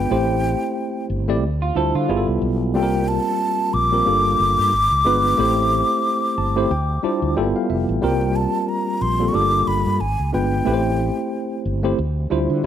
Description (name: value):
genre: R&B, neo-soul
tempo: 91 BPM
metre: 4/4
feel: swing 57% on 16ths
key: D minor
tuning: A4 = 442 Hz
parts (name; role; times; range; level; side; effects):
- breathy concert flute; melody; 0.0-11.6 s; G5 to D6; -21 LUFS; left 1 dB; slapback echo
- tine electric piano; accompaniment; 0.0-12.7 s; G3 to A5; -21 LUFS; equal; overdrive, fast stereo tremolo
- fretless electric bass; bass; 0.0-12.7 s; F1 to D3; -23 LUFS; equal; none
- electric guitar through a small old amp; second line; 1.6-2.3 s; F4 to A4; -27 LUFS; right 6 dB; wide subtle chorus
room: light reverb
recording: none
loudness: -17 LUFS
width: side -10 dB against mid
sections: 0.0-8.0 A section; 8.0-12.7 A section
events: tine electric piano fill 6.0-8.0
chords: 0.1 Am7; 1.4 Dm11; 2.1 G13; 2.7 C7sus4; 4.1 Gm9; 4.7 G#dim7; 5.4 Am7; 6.7 Dm11; 7.4 G13; 8.0 C7sus4; 9.3 Gm9; 10.0 G#dim7; 10.6 Am7; 12.0 Dm11